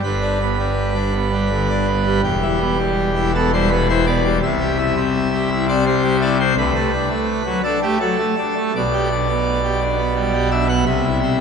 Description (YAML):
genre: classical, chorale-style piece for pipe organ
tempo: 84 BPM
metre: 3/4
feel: rubato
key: G major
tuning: A4 = 440 Hz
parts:
  - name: pipe organ, full organ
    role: solo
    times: 0.0-11.4 s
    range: E1 to F#5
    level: -16 LUFS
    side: equal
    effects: none
room: wet cathedral reverb, RT60 4.6 s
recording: nothing above 10.5 kHz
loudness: -16 LUFS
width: side -6 dB against mid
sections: 0.0-11.4 A section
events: none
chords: 0.0 G; 2.2 Em; 4.4 C; 6.6 D; 8.7 G/B; 10.9 Am/C (rootless)